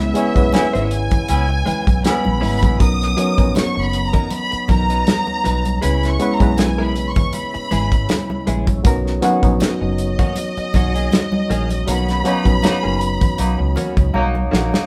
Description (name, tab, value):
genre	lush 1970s-style soul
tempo	79 BPM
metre	4/4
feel	swing 54% on 16ths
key	B major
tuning	A4 = 437 Hz
part	warm studio violin section	melody	0.0-14.1 s	D#5 to D#6	-26 LUFS	equal	none
part	barky reed electric piano	accompaniment	0.0-14.9 s	F#3 to C#5	-25 LUFS	equal	overdrive, fast tremolo
part	percussive tonewheel organ	sustained chords	0.0-14.9 s	C#3 to E4	-31 LUFS	equal	overdrive, chorus vibrato, slow rotary speaker
part	direct-recorded clean electric guitar	riff	0.0-14.8 s	D#3 to C#5	-29 LUFS	equal	none
part	vintage muted fingered electric bass	bass	0.0-14.7 s	F#1 to C#2	-23 LUFS	equal	none
part	clear horn section	stabs	0.2-2.8, 12.2-14.9 s	F#3 to E4	-25 LUFS	equal	none
part	damped 70s drum kit	drums	0.2-14.9 s	hi-hat, kick drum, snare drum	-20 LUFS	equal	none
part	congas	percussion	0.5-14.9 s	none	-28 LUFS	equal	none
room	moderate studio reverb, RT60 0.8 s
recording	band playing live in one room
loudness	-18 LUFS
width	mono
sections	0.0-14.9 A section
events	band accent 0.0-2.8, 11.9-14.9; drum fill 14.1-14.9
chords	0.0 C#m7; 2.8 Bmaj9; 5.8 C#m7; 8.9 Bmaj9